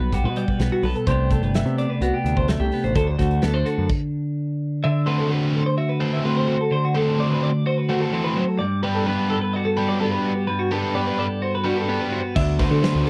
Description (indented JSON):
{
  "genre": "math rock and midwest emo",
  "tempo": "128 BPM",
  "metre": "4/4",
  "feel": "straight",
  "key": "unclear",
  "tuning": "A4 = 440 Hz",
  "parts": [
    { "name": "twelve-string electric guitar", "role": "accompaniment", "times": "0.0-13.1 s", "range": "G2 to C5", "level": "-25 LUFS", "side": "equal", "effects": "none" },
    { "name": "twelve-string electric guitar", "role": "arpeggios", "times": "0.0-13.1 s", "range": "F#4 to E5", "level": "-28 LUFS", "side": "equal", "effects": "none" },
    { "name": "growling picked electric bass", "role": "bass", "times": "0.0-3.9, 12.4-13.0 s", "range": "G1 to D3", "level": "-25 LUFS", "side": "equal", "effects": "overdrive" },
    { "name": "loose indie drum kit", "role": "drums", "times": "0.1-4.0, 12.4-13.1 s", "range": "crash cymbal, hi-hat, kick drum, snare drum", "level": "-27 LUFS", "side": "equal", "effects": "none" },
    { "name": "biting overdriven guitar", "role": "riff", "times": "5.1-13.1 s", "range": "A3 to C5", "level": "-28 LUFS", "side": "equal", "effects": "none" }
  ],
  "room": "studio ambience",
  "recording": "dry, close 1970s-style studio recording",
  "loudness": "-22 LUFS",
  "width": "mono",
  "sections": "0.0-4.8 A section; 4.8-13.1 B section",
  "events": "stop 3.9-4.8",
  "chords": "0.0 Gmaj9/B; 1.1 Am11; 3.0 D7; 4.8 D13; 8.6 Gmaj9; 12.4 D13",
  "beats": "0.13 0.60 | 1.07 1.54 2.01 2.48 | 2.95 3.42 3.89 4.36 | 4.83 5.30 5.78 6.25 | 6.71 7.18 7.65 8.12 | 8.59 9.06 9.54 10.01 | 10.47 10.95 11.42 11.89 | 12.36 12.83"
}